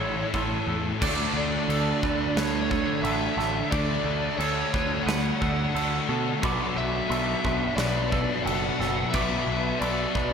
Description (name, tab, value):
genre	rock, shoegaze and dream pop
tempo	89 BPM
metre	4/4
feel	straight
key	D major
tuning	A4 = 440 Hz
part	biting lead guitar	melody	0.0-10.3 s	C#5 to F#5	-31 LUFS	left 1 dB	overdrive, tape echo
part	twangy electric guitar	arpeggios	0.0-10.3 s	A4 to D5	-34 LUFS	right 7 dB	wide subtle chorus, tape echo
part	crunchy overdriven guitar	riff	0.0-10.3 s	A2 to A4	-33 LUFS	right 9 dB	reverse reverb
part	thick fuzz guitar	riff	0.0-10.3 s	A2 to D4	-29 LUFS	left 6 dB	distortion, ensemble chorus
part	growling picked electric bass	bass	0.0-10.3 s	F#1 to B2	-31 LUFS	right 1 dB	overdrive
part	huge arena drum kit	drums	0.3-10.3 s	crash cymbal, kick drum, snare drum	-32 LUFS	equal	none
part	overdriven electric guitar	riff	1.0-10.3 s	B2 to D4	-34 LUFS	right 1 dB	ensemble chorus
room	wet huge ambient reverb, RT60 7.8 s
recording	dreamy mix soaked in reverb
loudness	-23 LUFS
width	side -6 dB against mid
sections	0.0-1.0 A section; 1.0-10.3 B section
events	none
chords	0.0 A; 1.0 Dmaj7; 6.4 Bm7